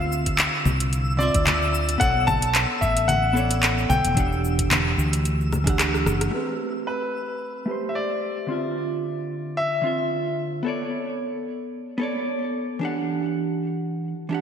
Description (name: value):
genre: sunset chillout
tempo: 111 BPM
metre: 4/4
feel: swing 55% on 16ths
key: A minor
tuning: A4 = 440 Hz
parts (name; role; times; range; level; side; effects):
- clear concert grand piano; melody; 0.0-10.3 s; B4 to A5; -26 LUFS; left 2 dB; ping-pong delay
- vintage hollow-body jazz guitar; accompaniment; 0.0-14.4 s; D3 to F#5; -27 LUFS; moving between left 3 dB and right 4 dB; auto-pan, low-pass filter, ping-pong delay
- mellow fretless electric bass; bass; 0.0-6.3 s; E1 to D2; -24 LUFS; equal; none
- twinkling granular texture; texture; 0.0-6.3 s; E6; -33 LUFS; equal; built-in reverb
- deep house drum kit; drums; 0.1-6.3 s; cabasa, congas, handclaps, hi-hat, rim click; -24 LUFS; left 1 dB; overdrive, gated reverb
- electronic kick drum; drums; 0.3-5.8 s; none; -26 LUFS; equal; overdrive
room: wet lush hall reverb, RT60 2.5 s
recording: bright 1980s-style digital production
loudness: -21 LUFS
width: side -8 dB against mid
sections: 0.0-6.3 A section; 6.3-14.4 B section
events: drum fill 5.5-6.3; band accent 6.2; filter sweep on hollow-body jazz guitar 6.3-14.4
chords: 0.0 Dm9; 2.0 Bm9; 4.2 Em9; 6.3 Am9; 8.5 Dm9; 10.7 Bm9; 12.8 Em9